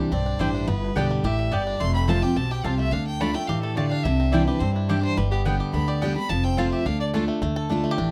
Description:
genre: bluegrass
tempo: 214 BPM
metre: 4/4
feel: straight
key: D dorian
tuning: A4 = 439 Hz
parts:
  - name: bluegrass banjo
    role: melody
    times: 0.0-8.1 s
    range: D3 to A4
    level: -35 LUFS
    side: equal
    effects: plate reverb
  - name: picked steel-string acoustic guitar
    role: accompaniment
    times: 0.0-8.1 s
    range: F2 to G4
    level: -27 LUFS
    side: equal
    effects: none
  - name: clear fiddle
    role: melody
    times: 0.1-7.1 s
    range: E4 to C6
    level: -32 LUFS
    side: equal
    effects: plate reverb
  - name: upright bass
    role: bass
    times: 0.1-8.1 s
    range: F1 to G2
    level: -29 LUFS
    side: equal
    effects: none
  - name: mandolin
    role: stabs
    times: 0.4-7.2 s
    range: A3 to A5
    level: -34 LUFS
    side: equal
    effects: none
room: light reverb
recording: close, detailed microphones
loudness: -24 LUFS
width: mono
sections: 0.0-7.4 A section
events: none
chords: 0.0 Cadd9; 0.7 G; 1.8 F; 2.9 Dm; 4.1 Cadd9; 5.2 G; 6.3 F; 6.9 Dm

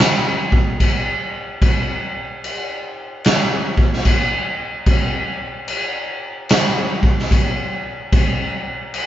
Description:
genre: metal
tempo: 74 BPM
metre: 4/4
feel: swing 66% on 8ths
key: none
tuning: none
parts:
  - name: raw garage drum kit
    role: drums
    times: 0.0-9.1 s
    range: crash cymbal, kick drum, snare drum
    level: -16 LUFS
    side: equal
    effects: none
room: little or no reverb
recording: band playing live in one room, nothing above 7.6 kHz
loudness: -17 LUFS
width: side -12 dB against mid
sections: 0.0-9.1 A section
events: none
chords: none

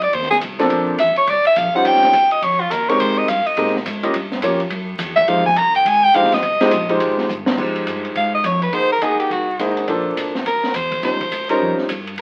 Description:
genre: jazz, small-group swing and bop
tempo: 209 BPM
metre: 4/4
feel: swing 62% on 8ths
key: F minor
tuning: A4 = 440 Hz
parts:
  - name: breathy soprano saxophone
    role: melody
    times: 0.0-11.8 s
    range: F4 to Bb5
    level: -18 LUFS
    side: equal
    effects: none
  - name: upright bass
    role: bass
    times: 0.0-12.2 s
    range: F1 to Bb2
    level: -32 LUFS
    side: equal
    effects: none
  - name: open jazz drum kit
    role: drums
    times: 0.0-12.2 s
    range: crash cymbal, hi-hat, kick drum, ride cymbal, snare drum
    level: -28 LUFS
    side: equal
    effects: none
  - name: warm concert grand piano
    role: accompaniment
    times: 0.6-11.9 s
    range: F3 to Eb5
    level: -22 LUFS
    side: equal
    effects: none
room: moderate studio reverb, RT60 0.5 s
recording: very old 78 rpm record, vinyl crackle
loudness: -18 LUFS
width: mono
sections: 0.0-7.6 A section; 7.6-12.2 B section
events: soprano saxophone solo 0.0-7.6; drum fill 7.3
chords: 0.0 Ab9 (rootless); 0.7 Bbmaj9; 1.8 Eb13; 3.0 Abmaj9; 4.1 Gm7b5; 4.7 Esus2; 5.3 Fm9; 8.7 Ab9; 9.9 Bbmaj9; 11.0 Eb13

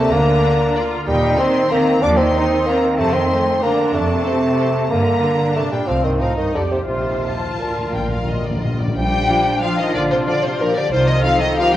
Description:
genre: classical, orchestral ballroom waltz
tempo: 161-203 BPM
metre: 3/4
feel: rubato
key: Bb major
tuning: A4 = 441 Hz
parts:
  - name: warm symphonic violin section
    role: second line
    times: 0.0-11.7 s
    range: D4 to D6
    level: -27 LUFS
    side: left 3 dB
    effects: none
  - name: mellow bassoon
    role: accompaniment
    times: 0.0-11.8 s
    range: Bb2 to D4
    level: -20 LUFS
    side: equal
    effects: none
  - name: rich symphonic viola section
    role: accompaniment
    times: 0.0-11.8 s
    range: A3 to A4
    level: -24 LUFS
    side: equal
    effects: none
  - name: rich symphonic cello section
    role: bass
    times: 0.0-11.7 s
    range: D2 to G3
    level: -23 LUFS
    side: right 1 dB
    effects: none
  - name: rich symphonic double bass section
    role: bass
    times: 0.1-11.2 s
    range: Bb1 to G2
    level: -24 LUFS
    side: right 1 dB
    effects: none
  - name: rich studio violin section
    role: melody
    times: 0.4-11.8 s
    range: A4 to A5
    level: -23 LUFS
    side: left 3 dB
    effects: none
  - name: timpani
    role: percussion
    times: 6.9-8.9 s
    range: Bb2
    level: -25 LUFS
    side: left 1 dB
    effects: none
  - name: mellow hollow silver concert flute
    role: second line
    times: 9.0-11.8 s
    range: Bb4 to G5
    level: -23 LUFS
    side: left 2 dB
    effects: none
  - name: warm clarinet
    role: second line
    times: 9.0-11.8 s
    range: D4 to Eb4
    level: -28 LUFS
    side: left 1 dB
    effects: none
  - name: clear trombone section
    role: sustained chords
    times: 9.3-11.7 s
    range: Eb3 to F3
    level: -30 LUFS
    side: right 1 dB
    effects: none
  - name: mellow French horn section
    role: sustained chords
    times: 9.3-11.7 s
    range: C4 to F4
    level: -29 LUFS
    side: left 1 dB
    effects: none
room: wet recital hall reverb, RT60 1.7 s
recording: worn, warbling old tape, cassette tape, warbly pitch drift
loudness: -15 LUFS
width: side -13 dB against mid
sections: 0.0-9.0 A section; 9.0-11.8 A section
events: timpani fill 6.9-9.0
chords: 0.0 Bb/D; 1.1 Cm7/Eb; 3.0 F; 4.9 Gm; 5.9 Cm; 6.5 F9; 6.9 Bb; 10.9 F7/C

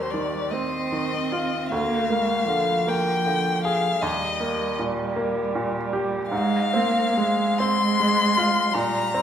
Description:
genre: classical, slow romantic movement for piano trio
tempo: 52 BPM (dotted quarters)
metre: 6/8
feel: rubato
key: unclear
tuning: A4 = 439 Hz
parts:
  - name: warm violin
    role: melody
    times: 0.0-9.2 s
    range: C5 to C6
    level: -24 LUFS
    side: left 4 dB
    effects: none
  - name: warm cello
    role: second line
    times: 0.0-9.2 s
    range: F3 to C4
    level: -27 LUFS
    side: right 3 dB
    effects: none
  - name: bright baby grand piano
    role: accompaniment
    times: 0.0-9.2 s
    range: D2 to Ab4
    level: -26 LUFS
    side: right 1 dB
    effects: none
room: wet recital hall reverb, RT60 1.7 s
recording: recorded in a church or concert hall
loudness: -21 LUFS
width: side -9 dB against mid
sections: 0.0-9.2 A section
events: none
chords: 0.0 F5/Eb; 1.7 Bb7/D; 4.0 Eb; 6.3 Fm/Ab

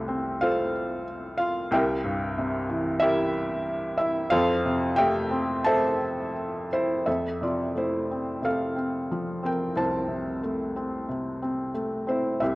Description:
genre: classical, lyrical solo piano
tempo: 91 BPM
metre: 4/4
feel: rubato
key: F major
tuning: A4 = 440 Hz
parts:
  - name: felt-muted upright piano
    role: solo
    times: 0.0-12.6 s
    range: C2 to A5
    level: -24 LUFS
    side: equal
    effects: none
room: moderate concert hall reverb, RT60 2.0 s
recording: worn, warbling old tape, cassette tape, warbly pitch drift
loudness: -24 LUFS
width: side -20 dB against mid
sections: 0.0-7.1 A section; 7.1-12.6 B section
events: none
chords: 0.0 Fmaj7; 1.7 C7; 4.3 Fmaj7

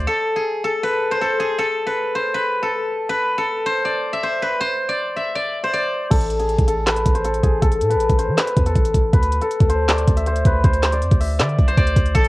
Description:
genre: hip hop, trap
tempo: 159 BPM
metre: 4/4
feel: half-time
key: A harmonic minor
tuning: A4 = 442 Hz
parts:
  - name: steel-string zither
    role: melody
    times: 0.0-12.3 s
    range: G#4 to E5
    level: -20 LUFS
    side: left 1 dB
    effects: low-pass filter, cassette tape
  - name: warm 808-style bass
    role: bass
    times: 0.0-0.1, 6.1-12.3 s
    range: A1 to E3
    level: -20 LUFS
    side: equal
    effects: none
  - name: trap drum kit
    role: drums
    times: 6.1-12.3 s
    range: crash cymbal, handclaps, hi-hat, kick drum, snare drum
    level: -17 LUFS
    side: equal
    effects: none
room: light reverb, digital ambience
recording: home recording on cassette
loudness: -16 LUFS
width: side -19 dB against mid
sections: 0.1-6.1 A section; 6.1-12.3 B section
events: filter sweep on guzheng 6.1-12.2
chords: 0.1 N.C.; 6.1 A5; 9.1 D5

